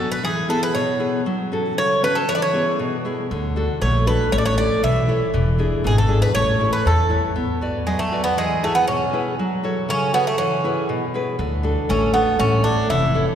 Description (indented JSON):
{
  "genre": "greek folk, Greek bouzouki band",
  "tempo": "119 BPM",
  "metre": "2/4",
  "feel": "straight",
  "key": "unclear",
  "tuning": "A4 = 442 Hz",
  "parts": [
    { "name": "Greek bouzouki", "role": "melody", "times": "0.0-13.2 s", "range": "G#3 to E5", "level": "-22 LUFS", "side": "right 2 dB", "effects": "none" },
    { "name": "nylon-string guitar", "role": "accompaniment", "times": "0.0-13.3 s", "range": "B2 to D5", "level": "-22 LUFS", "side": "left 1 dB", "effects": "none" },
    { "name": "upright bass", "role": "bass", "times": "3.3-7.2, 11.4-13.2 s", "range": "E1 to E2", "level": "-21 LUFS", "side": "left 1 dB", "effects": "none" }
  ],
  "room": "wet church reverb, RT60 3.5 s",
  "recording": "recorded in a church or concert hall",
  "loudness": "-18 LUFS",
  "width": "side -9 dB against mid",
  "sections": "0.0-7.4 A section; 7.4-13.3 A section",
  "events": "none",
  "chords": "0.2 E; 1.3 F#m; 2.3 E; 3.3 D; 4.3 A; 5.3 E7; 6.4 A; 7.4 Bm; 8.4 E; 9.4 F#m; 10.4 E; 11.4 D; 12.4 A"
}